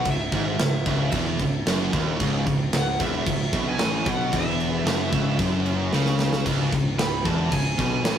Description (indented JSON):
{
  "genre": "heavy metal",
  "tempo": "113 BPM",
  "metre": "4/4",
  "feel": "straight",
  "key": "C# minor",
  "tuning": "A4 = 440 Hz",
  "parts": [
    { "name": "high-gain lead guitar", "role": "melody", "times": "0.0-8.2 s", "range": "E5 to B5", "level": "-30 LUFS", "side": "right 2 dB", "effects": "distortion, tape echo" },
    { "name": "fuzz guitar", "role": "riff", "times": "0.0-8.2 s", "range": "C#2 to C#3", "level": "-31 LUFS", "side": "equal", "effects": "distortion" },
    { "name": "scooped high-gain guitar", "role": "riff", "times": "0.0-8.2 s", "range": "C#2 to C#3", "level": "-28 LUFS", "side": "right 5 dB", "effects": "distortion" },
    { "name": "sludgy distorted guitar", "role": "riff", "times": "0.0-8.2 s", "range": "C#2 to C#3", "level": "-28 LUFS", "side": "left 5 dB", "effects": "overdrive" },
    { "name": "modern bright picked electric bass", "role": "bass", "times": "0.0-8.2 s", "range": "C#1 to C#2", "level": "-30 LUFS", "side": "equal", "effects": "none" },
    { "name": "tight metal drum kit", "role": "drums", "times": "0.1-8.2 s", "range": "crash cymbal, kick drum, snare drum", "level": "-26 LUFS", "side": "right 1 dB", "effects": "none" }
  ],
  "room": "light reverb",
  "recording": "rough rehearsal-room recording",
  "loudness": "-21 LUFS",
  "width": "side -9 dB against mid",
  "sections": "0.0-8.2 A section",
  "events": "drum fill 5.9-6.5",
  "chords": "0.0 C#m"
}